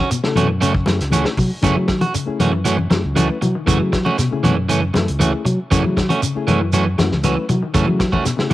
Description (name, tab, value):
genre	afrobeat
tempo	118 BPM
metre	4/4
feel	straight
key	F# dorian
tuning	A4 = 440 Hz
part	semi-hollow electric guitar	arpeggios	0.0-8.5 s	B2 to F#3	-25 LUFS	left 5 dB	wide subtle chorus, cassette tape
part	electric guitar at the edge of break-up	stabs	0.0-8.5 s	E3 to F#4	-21 LUFS	right 4 dB	cassette tape
part	warm soul drum kit	drums	0.1-8.5 s	hi-hat, kick drum, snare drum	-22 LUFS	equal	cassette tape
part	shekere	percussion	0.1-8.4 s	none	-25 LUFS	right 3 dB	none
part	reed electric piano	accompaniment	0.2-8.5 s	A3 to B4	-26 LUFS	left 5 dB	cassette tape
part	fingered electric bass	bass	0.2-8.5 s	C#2 to F#3	-20 LUFS	equal	none
part	congas	percussion	0.4-8.5 s	none	-20 LUFS	left 2 dB	none
room	light reverb, small room ambience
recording	home recording on cassette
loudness	-15 LUFS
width	side -15 dB against mid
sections	0.0-8.5 A section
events	none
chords	0.0 F#m7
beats	0.10 0.61 1.12 | 1.63 2.15 2.65 3.17 | 3.67 4.18 4.70 5.20 | 5.71 6.22 6.73 7.24 | 7.75 8.26